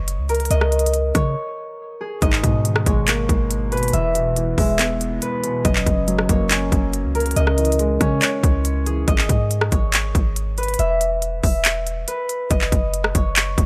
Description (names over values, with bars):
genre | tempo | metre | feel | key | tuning
hip hop, trap | 140 BPM | 4/4 | half-time | G# minor | A4 = 439 Hz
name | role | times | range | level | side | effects
concert harp | melody | 0.0-13.7 s | G#4 to E5 | -26 LUFS | equal | tape echo
clean 808-style bass | bass | 0.0-13.7 s | E1 to C#3 | -24 LUFS | equal | none
trap drum kit | drums | 0.1-13.7 s | handclaps, hi-hat, kick drum, rim click | -22 LUFS | equal | none
dark concert grand piano | accompaniment | 2.2-9.1 s | E2 to C#5 | -26 LUFS | equal | none
room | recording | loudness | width
small room ambience | none | -20 LUFS | mono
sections
0.0-13.7 A section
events
break 1.4-2.2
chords
0.0 F#5; 0.5 C#sus2; 2.2 G#madd9; 3.9 E; 5.6 F#; 7.4 C#m; 9.1 G#5; 10.8 E5; 12.5 F#5